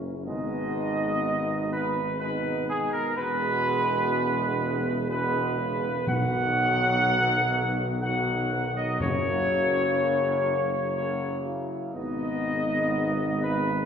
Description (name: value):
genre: classical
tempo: 62 BPM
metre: 3/4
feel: straight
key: B major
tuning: A4 = 440 Hz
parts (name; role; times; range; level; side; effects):
- warm French horn section; sustained chords; 0.0-13.9 s; A#3 to F#4; -34 LUFS; left 4 dB; none
- warm trombone section; sustained chords; 0.0-13.8 s; B2 to B3; -33 LUFS; right 1 dB; none
- warm tuba; bass; 0.0-13.9 s; E1 to B1; -30 LUFS; right 1 dB; none
- mellow trumpet section; melody; 0.3-13.9 s; G#4 to F#5; -26 LUFS; equal; none
- timpani; percussion; 6.1-10.4 s; F#2 to B2; -33 LUFS; left 1 dB; none
room: wet scoring stage reverb, RT60 1.7 s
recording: heard from further back in the room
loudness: -24 LUFS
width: side -7 dB against mid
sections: 0.0-13.9 A section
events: none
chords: 0.3 G#m; 3.2 Eadd9; 6.1 B; 9.0 F#; 12.0 G#m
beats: | 0.28 1.24 2.21 | 3.17 4.13 5.09 | 6.08 7.05 8.02 | 9.01 9.99 10.98 | 11.96 12.94